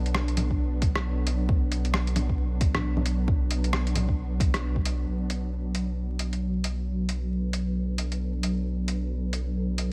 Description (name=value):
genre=future garage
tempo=134 BPM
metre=4/4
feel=swing 60% on 16ths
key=B minor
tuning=A4 = 442 Hz
part: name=ethereal airy pad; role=sustained chords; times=0.0-9.9 s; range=F#3 to B4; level=-34 LUFS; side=equal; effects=ensemble chorus, built-in reverb, sidechain pumping
part: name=soft dub sub bass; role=bass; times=0.0-9.9 s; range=B1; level=-31 LUFS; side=equal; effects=sidechain pumping
part: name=lo-fi sampler-style drum kit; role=drums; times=0.1-9.9 s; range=bongos, hi-hat, rim click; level=-33 LUFS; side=equal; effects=overdrive, studio reverb
part: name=electronic kick drum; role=drums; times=0.5-4.8 s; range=none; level=-28 LUFS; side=equal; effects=studio reverb
room=light reverb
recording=vinyl crackle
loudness=-27 LUFS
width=mono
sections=0.0-5.1 A section; 5.1-9.9 B section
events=filter sweep on ambient pad 5.1-9.9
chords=0.0 Bm7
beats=0.15 0.60 1.04 | 1.49 1.94 2.39 2.84 | 3.28 3.73 4.18 4.63 | 5.08 5.52 5.97 6.42 | 6.87 7.31 7.76 8.21 | 8.66 9.11 9.55